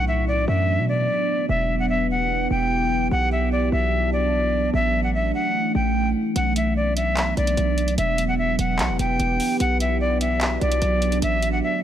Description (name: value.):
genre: hip hop, trap.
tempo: 148 BPM.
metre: 4/4.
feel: half-time.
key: B minor.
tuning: A4 = 440 Hz.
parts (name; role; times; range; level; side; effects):
breathy bright jazz flute; melody; 0.0-11.8 s; D5 to G5; -24 LUFS; equal; low-pass filter, digital delay.
deep dark ambient pad; sustained chords; 0.0-11.8 s; E3 to G4; -25 LUFS; right 1 dB; chorus, built-in reverb.
hard-hitting 808-style bass; bass; 0.0-11.6 s; E1 to B2; -24 LUFS; equal; none.
trap drum kit; drums; 6.4-11.5 s; handclaps, hi-hat; -28 LUFS; equal; none.
room: light reverb.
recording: none.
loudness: -19 LUFS.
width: side -10 dB against mid.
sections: 0.0-11.8 A section.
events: none.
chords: 0.0 Bm; 1.5 Em; 3.1 Bm; 4.7 A; 6.4 Bm; 8.0 Em; 9.6 Bm; 11.2 A.